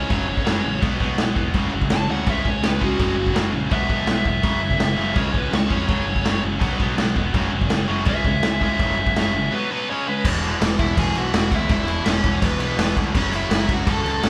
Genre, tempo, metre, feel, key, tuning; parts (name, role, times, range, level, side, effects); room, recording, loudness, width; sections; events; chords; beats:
punk rock; 166 BPM; 4/4; straight; A4 = 440 Hz
dark smooth lead guitar; melody; 0.0-14.3 s; B3 to A5; -28 LUFS; equal; overdrive
distorted electric guitar; riff; 0.0-14.3 s; E2 to C#4; -29 LUFS; equal; overdrive
tight distorted guitar; riff; 0.0-10.2 s; F#2 to C#4; -30 LUFS; equal; distortion
growling picked electric bass; bass; 0.0-14.3 s; E1 to E#2; -30 LUFS; equal; overdrive
raw garage drum kit; drums; 0.1-14.3 s; crash cymbal, kick drum, snare drum; -24 LUFS; equal
light reverb; band playing live in one room; -21 LUFS; mono
0.0-10.2 A section; 10.2-14.3 B section
lead electric guitar solo 0.0-10.2; break 9.5-10.2
0.1 F#m; 0.8 B5; 1.5 F#5; 2.3 C#5; 3.0 F#5; 3.7 B5; 4.4 F#5; 5.2 C#5; 5.9 F#5; 6.6 B5; 7.3 F#5; 8.1 C#m; 8.8 F#5; 9.5 B5; 9.9 C#5; 10.2 E5; 13.1 F#m
| 0.09 0.46 0.82 1.18 | 1.54 1.91 2.27 2.63 | 2.99 3.35 3.72 4.08 | 4.44 4.80 5.17 5.53 | 5.89 6.25 6.61 6.98 | 7.34 7.70 8.06 8.43 | 8.79 9.15 9.52 9.88 | 10.24 10.60 10.96 11.33 | 11.69 12.05 12.41 12.78 | 13.14 13.50 13.86 14.22